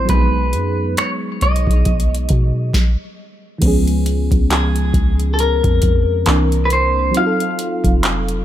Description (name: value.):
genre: contemporary R&B.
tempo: 68 BPM.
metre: 4/4.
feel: swing 58% on 16ths.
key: unclear.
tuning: A4 = 440 Hz.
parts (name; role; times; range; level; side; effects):
clean electric guitar; melody; 0.0-8.4 s; G#4 to F5; -21 LUFS; left 2 dB; spring reverb, ping-pong delay.
mellow FM electric piano; accompaniment; 0.0-8.4 s; D#3 to Bb4; -21 LUFS; right 1 dB; chorus.
soft 808-style bass; bass; 0.0-8.4 s; F1 to B2; -18 LUFS; equal; none.
booming analog drum machine; drums; 0.1-8.4 s; crash cymbal, finger snaps, handclaps, hi-hat, kick drum, snare drum; -17 LUFS; equal; none.
room: little or no reverb.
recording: none.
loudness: -14 LUFS.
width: side -12 dB against mid.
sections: 0.0-3.6 A section; 3.6-8.4 B section.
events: stop 2.7-3.6.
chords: 0.1 G#m7/B; 2.7 N.C.; 3.6 C#7; 6.3 C9; 7.1 F7b9.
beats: | 0.09 0.97 1.85 2.73 | 3.62 4.50 5.38 6.26 | 7.15 8.03.